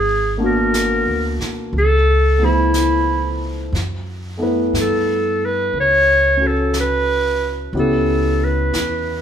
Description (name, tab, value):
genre	jazz ballad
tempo	60 BPM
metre	4/4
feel	swing 66% on 8ths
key	unclear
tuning	A4 = 435 Hz
part	clear clarinet	melody	0.0-9.2 s	E4 to C#5	-17 LUFS	right 1 dB	none
part	upright bass	bass	0.0-9.2 s	G#1 to G2	-21 LUFS	equal	none
part	warm grand piano	accompaniment	0.4-9.2 s	E#3 to B4	-21 LUFS	left 1 dB	none
part	jazz brush drum kit	drums	0.7-9.2 s	brushed snare drum, hi-hat, snare drum	-30 LUFS	right 1 dB	none
room	light reverb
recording	band playing live in one room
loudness	-15 LUFS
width	side -8 dB against mid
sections	0.0-9.2 A section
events	none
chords	0.0 G#m7b5; 1.7 C#7alt; 3.7 F#m7; 7.7 C#m7b5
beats	0.73 1.73 2.73 | 3.73 4.73 5.73 6.72 | 7.72 8.72